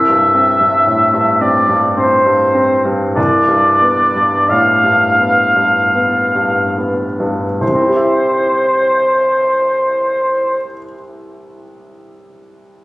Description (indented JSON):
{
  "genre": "classical, romantic movement for piano and orchestra",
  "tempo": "34-59 BPM",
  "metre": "3/4",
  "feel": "rubato",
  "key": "C major",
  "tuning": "A4 = 442 Hz",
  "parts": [
    { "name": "bright concert grand piano", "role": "melody", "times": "0.0-12.8 s", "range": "C2 to E5", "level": "-17 LUFS", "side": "equal", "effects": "none" },
    { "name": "warm oboe", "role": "second line", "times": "0.0-10.6 s", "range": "C5 to F5", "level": "-12 LUFS", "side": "equal", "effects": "none" }
  ],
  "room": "moderate recital hall reverb, RT60 1.5 s",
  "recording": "recorded on a phone in the room, studio reverb",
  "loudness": "-11 LUFS",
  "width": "side -20 dB against mid",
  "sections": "0.0-7.6 A section; 7.6-12.2 B section",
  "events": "slowing down 0.0-7.6",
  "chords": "0.0 C; 3.2 G7/C; 7.6 C"
}